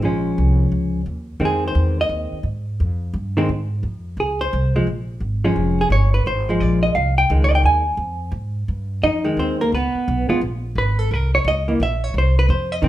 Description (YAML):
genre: jazz, small-group swing and bop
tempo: 173 BPM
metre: 4/4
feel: swing 65% on 8ths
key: F minor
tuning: A4 = 440 Hz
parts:
  - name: hollow-body jazz guitar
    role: accompaniment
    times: 0.0-12.9 s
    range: Eb3 to Ab5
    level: -19 LUFS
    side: equal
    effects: none
  - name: upright bass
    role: bass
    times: 0.0-12.9 s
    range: F1 to Ab2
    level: -20 LUFS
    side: equal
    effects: none
room: moderate large studio reverb, RT60 1.0 s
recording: minimal, uncompressed stereo recording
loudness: -17 LUFS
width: side -14 dB against mid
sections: 0.0-12.9 A section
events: none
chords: 0.0 Bbm7; 1.4 Fm7; 4.2 Bbm7; 6.9 Fm7; 9.7 Db7(no3); 11.1 C7b9